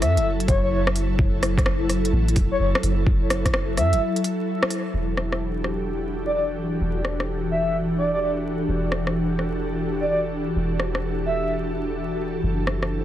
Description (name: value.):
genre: future garage.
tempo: 128 BPM.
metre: 4/4.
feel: swing 65% on 16ths.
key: E minor.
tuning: A4 = 440 Hz.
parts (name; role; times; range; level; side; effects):
breathy flute-like synth lead; melody; 0.0-11.5 s; C#5 to E5; -27 LUFS; equal; analog chorus, tape echo.
ethereal airy pad; sustained chords; 0.0-13.0 s; E3 to A4; -26 LUFS; equal; ensemble chorus, built-in reverb, sidechain pumping.
soft 808-style bass; bass; 0.0-13.0 s; E1 to F#2; -26 LUFS; equal; tube saturation, sidechain pumping.
organic electronic drum kit; drums; 0.0-12.9 s; hi-hat, rim click; -26 LUFS; equal; soft clipping on snare.
electronic kick drum; drums; 0.5-3.5 s; none; -22 LUFS; equal; none.
room: light reverb, digital ambience.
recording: dense, heavily limited modern master, vinyl crackle.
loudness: -21 LUFS.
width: side -12 dB against mid.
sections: 0.0-4.9 A section; 4.9-13.0 B section.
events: break 4.0-4.9; band accent 4.6.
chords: 0.0 F#m7; 4.9 Em11; 12.4 F#m7.